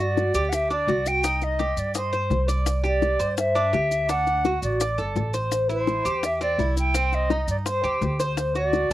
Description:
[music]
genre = latin, Cuban son and guajira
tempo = 168 BPM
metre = 4/4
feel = straight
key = unclear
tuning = A4 = 440 Hz
[part]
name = concert flute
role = melody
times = 0.0-8.9 s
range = C5 to G5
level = -25 LUFS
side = equal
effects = cassette tape
[part]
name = Cuban tres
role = arpeggios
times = 0.0-8.9 s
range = C4 to Eb5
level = -27 LUFS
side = right 1 dB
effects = cassette tape
[part]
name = upright bass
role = bass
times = 0.0-8.9 s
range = G1 to G2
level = -27 LUFS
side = equal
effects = none
[part]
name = bongos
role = percussion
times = 0.0-8.9 s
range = none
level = -28 LUFS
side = left 7 dB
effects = none
[part]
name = maracas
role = percussion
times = 0.2-8.9 s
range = none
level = -36 LUFS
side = left 5 dB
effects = none
[sound]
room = light reverb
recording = home recording on cassette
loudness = -21 LUFS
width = side -14 dB against mid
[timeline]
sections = 0.0-8.9 A section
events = none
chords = 0.0 G5; 1.2 Cm; 2.7 Cadd9; 4.1 D; 5.5 Am7; 6.9 Cmadd9; 8.4 D7

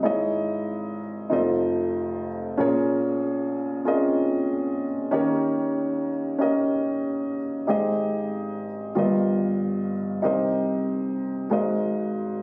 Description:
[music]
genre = gospel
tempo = 47 BPM (dotted quarters)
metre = 6/8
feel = straight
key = Ab major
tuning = A4 = 444 Hz
[part]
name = dark upright piano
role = solo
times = 0.0-12.4 s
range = F1 to Eb5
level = -25 LUFS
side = equal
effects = none
[sound]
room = wet recital hall reverb, RT60 1.6 s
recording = recorded on a phone in the room, club reverb, compression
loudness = -25 LUFS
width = mono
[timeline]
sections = 0.0-7.7 A section; 7.7-12.4 B section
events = none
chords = 0.0 Dbmadd9/Ab; 1.3 F7; 2.6 Bbm7; 5.1 Eb7; 7.7 Abmaj7; 9.0 G7alt; 10.2 Cm7; 11.5 Ab9

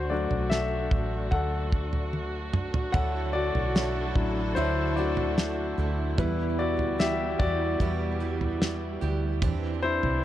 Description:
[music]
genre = pop ballad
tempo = 74 BPM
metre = 4/4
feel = straight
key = unclear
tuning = A4 = 440 Hz
[part]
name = warm concert grand piano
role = accompaniment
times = 0.0-10.2 s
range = F#3 to F#5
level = -29 LUFS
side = left 4 dB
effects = none
[part]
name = warm studio string section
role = sustained chords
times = 0.0-10.2 s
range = D3 to A4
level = -36 LUFS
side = right 1 dB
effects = none
[part]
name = woody fretless electric bass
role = bass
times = 0.0-10.2 s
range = A1 to E2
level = -31 LUFS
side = equal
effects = none
[part]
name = damped 70s drum kit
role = drums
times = 0.3-10.2 s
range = kick drum, snare drum, toms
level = -28 LUFS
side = right 1 dB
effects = none
[part]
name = picked steel-string acoustic guitar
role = arpeggios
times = 2.9-10.2 s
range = E2 to G4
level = -34 LUFS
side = right 8 dB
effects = tape echo
[sound]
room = light reverb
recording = dark, warm production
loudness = -25 LUFS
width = side -12 dB against mid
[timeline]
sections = 0.0-10.2 A section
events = grand piano solo 0.0-10.2; drum fill 2.1-2.9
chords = 0.0 D; 6.2 Em; 9.4 Cadd9

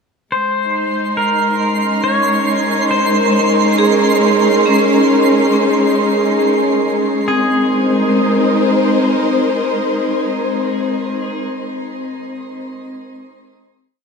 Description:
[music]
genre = ambient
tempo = 69 BPM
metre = 4/4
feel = straight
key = Ab major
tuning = A4 = 440 Hz
[part]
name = pedal steel guitar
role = melody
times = 0.3-11.5 s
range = Ab4 to Db5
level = -21 LUFS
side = left 1 dB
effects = ping-pong delay
[part]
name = dark symphonic string section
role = sustained chords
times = 0.3-11.5 s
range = Ab3 to C5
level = -16 LUFS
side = left 1 dB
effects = none
[part]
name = twinkling granular texture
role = texture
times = 0.9-7.3 s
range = C6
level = -23 LUFS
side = right 4 dB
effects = built-in reverb
[part]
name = vibraphone with hard mallets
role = arpeggios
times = 3.8-13.3 s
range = C4 to Ab4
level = -17 LUFS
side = right 1 dB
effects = ping-pong delay
[sound]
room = wet shimmer reverb, RT60 7.8 s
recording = none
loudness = -12 LUFS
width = side -5 dB against mid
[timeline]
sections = 0.3-7.3 A section; 7.3-10.7 final chord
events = none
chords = 0.3 Absus24; 7.3 Ab

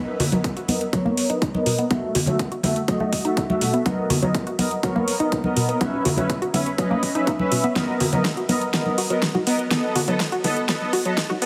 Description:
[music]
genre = progressive house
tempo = 123 BPM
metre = 4/4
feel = straight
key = B major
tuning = A4 = 440 Hz
[part]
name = soft supersaw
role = stabs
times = 0.0-11.5 s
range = A3 to E5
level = -27 LUFS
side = equal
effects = sidechain pumping, low-pass filter, tape echo
[part]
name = unison pluck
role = arpeggios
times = 0.2-11.5 s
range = B2 to F#4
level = -28 LUFS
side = equal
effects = sidechain pumping, tape echo
[part]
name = deep house drum kit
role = drums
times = 0.2-11.5 s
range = hi-hat, snare drum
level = -29 LUFS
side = equal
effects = overdrive, studio reverb
[part]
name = congas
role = percussion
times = 0.2-11.4 s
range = none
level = -30 LUFS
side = equal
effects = sidechain pumping on perc
[part]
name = electronic kick drum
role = drums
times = 0.4-11.3 s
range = none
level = -30 LUFS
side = equal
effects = high-pass filter on kick, studio reverb, high-pass filter on room
[sound]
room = light reverb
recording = heavily compressed radio sound, multiband compression, high-pass filter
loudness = -22 LUFS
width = mono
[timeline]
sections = 0.0-11.5 A section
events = build-up 0.0-11.5; filter sweep on synth pluck 0.0-11.5; filter sweep on supersaw synth 0.0-11.5; drum fill 7.8-11.5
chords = 0.0 Bmaj7; 1.9 F#m7; 3.9 Bmaj7; 5.8 C#m7; 7.8 Bmaj7; 9.7 F#m

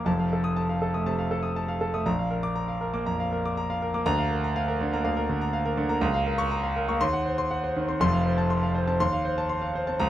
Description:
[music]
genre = classical, virtuoso piano study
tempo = 120 BPM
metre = 4/4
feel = rubato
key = Bb major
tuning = A4 = 440 Hz
[part]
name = clear concert grand piano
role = solo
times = 0.0-10.1 s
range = F1 to Eb6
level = -24 LUFS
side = equal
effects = none
[sound]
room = light reverb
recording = none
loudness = -24 LUFS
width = side -12 dB against mid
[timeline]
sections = 0.0-10.1 A section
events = none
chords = 0.1 F7; 2.1 Bb; 4.1 Bb/D; 6.0 Bbm/Db; 7.0 Cdim/Eb; 8.0 F; 9.0 F7/Eb

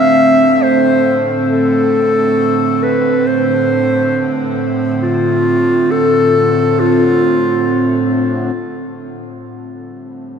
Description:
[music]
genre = ambient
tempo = free time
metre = none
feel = none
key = unclear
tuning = A4 = 441 Hz
[part]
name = clear clarinet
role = melody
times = 0.0-8.1 s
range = F4 to E5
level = -14 LUFS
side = left 2 dB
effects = ping-pong delay
[part]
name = evolving wavetable pad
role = sustained chords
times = 0.0-10.4 s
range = A2 to C4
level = -15 LUFS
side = right 2 dB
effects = chorus, built-in reverb
[sound]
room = wet cathedral reverb, RT60 5.6 s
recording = in a vast, echoing space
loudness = -11 LUFS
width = side -7 dB against mid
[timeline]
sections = 0.0-8.6 A section; 8.6-10.4 B section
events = none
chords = 0.0 Gsus4/A (rootless)

